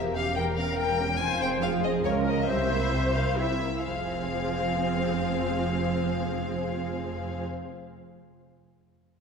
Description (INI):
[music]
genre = quick classical-period movement for string orchestra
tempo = 126-143 BPM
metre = 3/4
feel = straight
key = F minor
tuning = A4 = 440 Hz
[part]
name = dark studio violin section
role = second line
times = 0.0-7.4 s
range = Bb3 to C5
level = -32 LUFS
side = left 2 dB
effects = none
[part]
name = warm studio viola section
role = accompaniment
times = 0.0-7.4 s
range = F3 to C5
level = -32 LUFS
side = right 1 dB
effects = none
[part]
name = rich chamber cello section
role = bass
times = 0.0-7.4 s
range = C2 to F2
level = -32 LUFS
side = right 4 dB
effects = none
[part]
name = warm symphonic double bass section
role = bass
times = 0.0-7.4 s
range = E1 to Db2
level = -34 LUFS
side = right 2 dB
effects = none
[part]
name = rich chamber violin section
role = melody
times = 0.1-7.4 s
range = Db5 to Ab5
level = -31 LUFS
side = left 4 dB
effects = none
[sound]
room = wet concert hall reverb, RT60 2.3 s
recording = heard from further back in the room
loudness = -25 LUFS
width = side -6 dB against mid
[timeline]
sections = 0.0-3.9 A section; 3.9-6.7 B section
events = slowing down 0.6-3.9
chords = 0.0 Edim7; 1.2 Fm; 2.1 Bbm/Db; 2.5 C7; 3.9 Fm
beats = 0.36 0.78 | 1.20 1.63 2.05 | 2.49 2.93 3.38 | 3.86 4.33 4.79 | 5.26 5.73 6.19